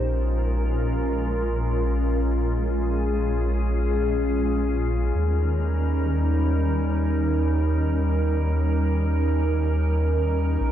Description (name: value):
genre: IDM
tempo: free time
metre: none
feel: none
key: unclear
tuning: A4 = 440 Hz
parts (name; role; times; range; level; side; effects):
- glassy FM pad; sustained chords; 0.0-10.7 s; G3 to Bb4; -25 LUFS; equal; ensemble chorus, built-in reverb
- dark detuned saw bass; bass; 0.0-10.7 s; Bb1 to Eb2; -23 LUFS; equal; none
room: digital ambience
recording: dry, gritty hardware recording, transformer saturation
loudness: -21 LUFS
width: side -10 dB against mid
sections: 0.0-10.7 A section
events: filter sweep on ambient pad 0.0-10.7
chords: 0.0 Bbm7; 5.1 Eb7